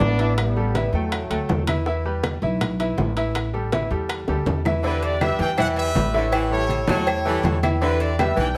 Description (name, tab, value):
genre	latin, salsa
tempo	161 BPM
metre	4/4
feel	straight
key	unclear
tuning	A4 = 437 Hz
part	bright trombone section	melody	0.0-1.7 s	F#3 to D4	-28 LUFS	equal	plate reverb
part	bright grand piano	accompaniment	0.0-8.5 s	E3 to G5	-29 LUFS	equal	none
part	upright bass	bass	0.0-8.6 s	A1 to E2	-27 LUFS	equal	none
part	bongos and cowbell	percussion	0.0-8.6 s	none	-33 LUFS	equal	none
part	congas	percussion	0.0-8.6 s	none	-31 LUFS	equal	none
part	timbales and agogo bells	percussion	0.0-8.4 s	none	-31 LUFS	equal	none
part	claves	percussion	0.4-8.4 s	none	-36 LUFS	equal	none
part	bright trumpet section	melody	4.8-8.5 s	D4 to G5	-28 LUFS	equal	plate reverb
part	edgy saxophone section	second line	4.8-8.6 s	D3 to F#3	-29 LUFS	equal	none
room	moderate studio reverb, RT60 0.7 s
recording	none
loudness	-22 LUFS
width	mono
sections	0.0-4.8 A section; 4.8-8.6 B section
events	drum fill 4.3-4.8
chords	0.4 A5; 1.9 Em; 3.4 A5; 4.8 Em7; 6.3 A7; 7.8 Em7